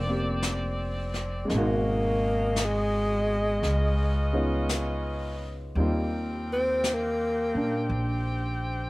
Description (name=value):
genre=jazz ballad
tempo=56 BPM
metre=4/4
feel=swing 67% on 8ths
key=unclear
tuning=A4 = 439 Hz
part: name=breathy tenor saxophone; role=melody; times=0.0-8.0 s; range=Ab3 to C4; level=-27 LUFS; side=equal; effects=none
part: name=warm baby grand piano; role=accompaniment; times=0.0-8.9 s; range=Cb3 to A4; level=-32 LUFS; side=equal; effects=slapback echo
part: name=bright saxophone section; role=sustained chords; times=0.0-8.9 s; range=C4 to G5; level=-34 LUFS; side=equal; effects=none
part: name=upright bass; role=bass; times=0.0-8.9 s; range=F1 to Bb2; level=-29 LUFS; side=equal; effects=none
part: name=jazz brush drum kit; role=drums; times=0.4-8.9 s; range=brushed snare drum, hi-hat, snare drum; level=-35 LUFS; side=left 1 dB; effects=none
room=little or no reverb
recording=none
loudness=-25 LUFS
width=side -21 dB against mid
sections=0.0-8.9 A section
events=tenor saxophone solo 0.0-8.9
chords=0.0 Bbmaj9; 1.5 Abm7; 3.6 Db9; 5.8 Eb6